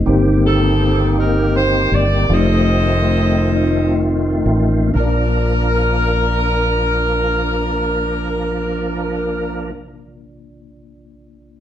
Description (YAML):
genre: slow gospel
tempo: 40-56 BPM (dotted quarters)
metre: 6/8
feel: straight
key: Bb major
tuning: A4 = 440 Hz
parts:
  - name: mellow tine electric piano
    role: accompaniment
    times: 0.0-11.6 s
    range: Bb1 to A5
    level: -21 LUFS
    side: left 1 dB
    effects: medium stereo tremolo
  - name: fingered electric bass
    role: bass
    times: 0.0-9.7 s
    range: F1 to Bb1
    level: -18 LUFS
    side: equal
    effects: none
  - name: bright tonewheel organ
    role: sustained chords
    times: 0.1-9.7 s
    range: Eb3 to Bb4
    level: -22 LUFS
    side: right 2 dB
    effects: fast rotary speaker, chorus vibrato
  - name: bright saxophone section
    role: melody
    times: 0.4-9.7 s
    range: C4 to Eb5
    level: -20 LUFS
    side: equal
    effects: none
room: wet stone room reverb, RT60 1.0 s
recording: band playing live in one room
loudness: -14 LUFS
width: side -10 dB against mid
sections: 0.1-4.9 A section; 4.9-10.9 B section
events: slowing down 0.1-4.9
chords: 0.1 Cm7/G; 2.3 F7; 4.9 Bbmaj7